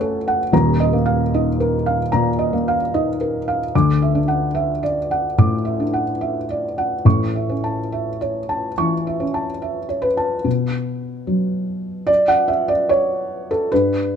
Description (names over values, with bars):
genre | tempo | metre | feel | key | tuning
neoclassical minimalist piano | 70-77 BPM | 4/4 | rubato | unclear | A4 = 442 Hz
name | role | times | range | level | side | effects
felt-muted upright piano | solo | 0.0-14.2 s | D#1 to F#6 | -17 LUFS | equal | none
room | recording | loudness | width
light reverb | none | -17 LUFS | side -7 dB against mid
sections
0.0-10.5 A section; 10.5-14.2 B section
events
none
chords
0.0 F#m; 0.5 D#sus2; 3.7 Dadd9; 7.0 A; 10.5 B5